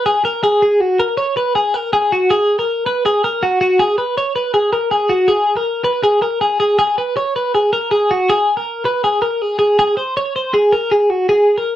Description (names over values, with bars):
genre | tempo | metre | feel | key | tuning
indie pop | 160 BPM | 4/4 | straight | unclear | A4 = 438 Hz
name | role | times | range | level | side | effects
twelve-string electric guitar | solo | 0.0-11.8 s | F#4 to C#5 | -13 LUFS | equal | tremolo, slapback echo
room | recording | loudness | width
light reverb | dry, close 1970s-style studio recording | -13 LUFS | side -12 dB against mid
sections
0.0-3.8 A section; 3.8-11.8 B section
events
none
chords
none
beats
0.06 0.43 | 0.81 1.18 1.55 1.93 | 2.30 2.67 3.05 3.42 | 3.79 4.17 4.54 4.92 | 5.29 5.67 6.04 6.42 | 6.79 7.17 7.54 7.92 | 8.29 8.67 9.04 9.41 | 9.79 10.16 10.54 10.91 | 11.29 11.66